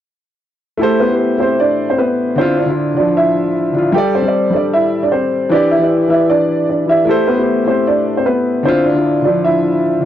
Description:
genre	hip hop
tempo	153 BPM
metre	4/4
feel	half-time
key	A minor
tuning	A4 = 441 Hz
part	dark grand piano	melody	0.8-10.1 s	A3 to G5	-14 LUFS	right 1 dB	none
part	dark grand piano	accompaniment	0.8-10.1 s	D3 to D5	-15 LUFS	left 1 dB	none
room	light reverb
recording	dry, gritty hardware recording, transformer saturation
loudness	-12 LUFS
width	side -11 dB against mid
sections	0.8-10.1 A section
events	none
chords	0.8 Am7; 2.4 Dmadd9; 3.9 Gsus2; 5.5 Em7; 7.1 Am7; 8.7 Dmadd9

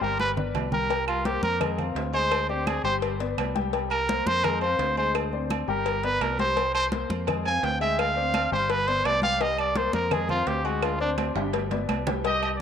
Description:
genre	latin, salsa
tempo	169 BPM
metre	4/4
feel	straight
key	unclear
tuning	A4 = 440 Hz
part	bright trumpet	melody	0.0-11.1 s	D4 to Ab5	-26 LUFS	right 1 dB	none
part	dark baby grand piano	accompaniment	0.0-12.5 s	G3 to Ab5	-30 LUFS	left 9 dB	none
part	fingered electric bass	bass	0.0-12.6 s	G1 to F2	-32 LUFS	right 1 dB	none
part	agogo bells and timbales	percussion	0.2-12.6 s	none	-34 LUFS	right 13 dB	none
part	congas	percussion	0.2-12.6 s	none	-33 LUFS	equal	none
part	cowbell	percussion	0.9-12.4 s	none	-34 LUFS	left 9 dB	none
part	claves	percussion	1.1-12.6 s	none	-38 LUFS	right 15 dB	none
part	warm trumpet section	melody	12.3-12.6 s	G4 to Eb5	-25 LUFS	equal	none
room	wet spring reverb, RT60 1.9 s, studio reverb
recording	1960s-style stereo with parts hard left and right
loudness	-23 LUFS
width	side -8 dB against mid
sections	0.0-12.2 A section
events	trumpet solo 0.0-12.2; drum fill 0.2-0.9, 10.8-12.2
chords	0.2 G; 0.9 C5; 1.6 Fm; 2.3 Abmaj7#11; 3.0 G; 3.7 C5; 4.4 Fm; 5.2 Bb13; 5.9 G; 6.6 C5; 7.3 Fm; 8.0 Dm7b5; 8.7 G; 9.4 C5; 10.1 Fm; 10.8 Fm69; 11.5 G

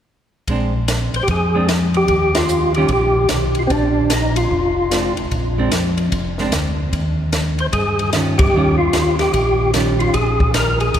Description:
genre	soul jazz organ trio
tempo	149 BPM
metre	4/4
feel	swing 64% on 8ths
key	Bb mixolydian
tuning	A4 = 440 Hz
part	vintage hollow-body jazz guitar	accompaniment	0.5-10.2 s	Eb3 to F4	-24 LUFS	right 2 dB	none
part	mellow tonewheel organ	bass	0.5-11.0 s	F1 to G2	-20 LUFS	equal	overdrive, chorus vibrato, slow rotary speaker
part	compact cocktail drum kit	drums	0.5-11.0 s	hi-hat, kick drum, ride cymbal, snare drum	-22 LUFS	equal	none
part	percussive tonewheel organ	melody	1.2-5.1, 7.6-11.0 s	C4 to C5	-18 LUFS	equal	slow rotary speaker, overdrive, chorus vibrato
room	wet cathedral reverb, RT60 4.9 s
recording	recorded in a church or concert hall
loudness	-15 LUFS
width	side -9 dB against mid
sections	0.5-11.0 A section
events	band accent 2.3, 8.3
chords	0.5 Bb9; 2.1 Ebadd9; 3.7 Bb9; 6.9 Eb9; 10.1 Bb7(no3)

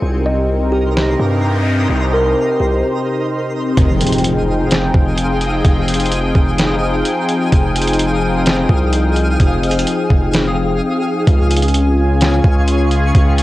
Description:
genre	hip hop, atmospheric cloud-rap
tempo	128 BPM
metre	4/4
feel	half-time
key	F minor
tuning	A4 = 440 Hz
part	sweeping resonant pad	sustained chords	0.0-13.4 s	C3 to Ab5	-17 LUFS	left 1 dB	chorus, sidechain pumping, low-pass filter
part	long sustained 808-style bass	bass	0.0-13.4 s	F1 to G2	-17 LUFS	equal	none
part	noise sweep and impact	sound effects	0.4-5.6 s	none	-24 LUFS	equal	none
part	twinkling granular texture	texture	0.0-13.4 s	Ab4 to Eb6	-25 LUFS	equal	built-in reverb
part	kalimba	melody	0.3-2.8 s	G4 to Eb5	-21 LUFS	equal	low-pass filter, cassette tape, tape echo
part	trip hop sampler-style drum kit	drums	1.0-13.4 s	hi-hat, kick drum, snare drum	-16 LUFS	equal	none
room	light reverb, digital ambience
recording	home recording on cassette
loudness	-12 LUFS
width	side -16 dB against mid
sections	0.0-3.8 A section; 3.8-13.4 B section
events	noise sweep 0.4-3.8; break 2.8-3.8, 10.8-11.3; impact 3.8-5.6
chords	0.0 Cm7; 3.8 Fm7; 11.3 Db

